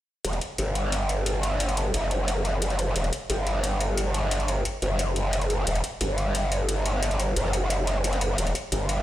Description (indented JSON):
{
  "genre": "dark technical drum and bass",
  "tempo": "177 BPM",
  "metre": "4/4",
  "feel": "straight",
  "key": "E minor",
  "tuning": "A4 = 440 Hz",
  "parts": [
    { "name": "growl bass", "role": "bass", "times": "0.2-9.0 s", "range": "E1 to G1", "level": "-24 LUFS", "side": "equal", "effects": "distortion, chorus, tube saturation" },
    { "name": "electronic hi-hat", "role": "drums", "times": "0.2-9.0 s", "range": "none", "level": "-32 LUFS", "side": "left 1 dB", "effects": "overdrive" }
  ],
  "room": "little or no reverb",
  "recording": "played on a big sound system in a bare room, stone room reverb",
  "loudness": "-24 LUFS",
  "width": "side -13 dB against mid",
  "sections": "0.2-9.0 A section",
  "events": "none",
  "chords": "none"
}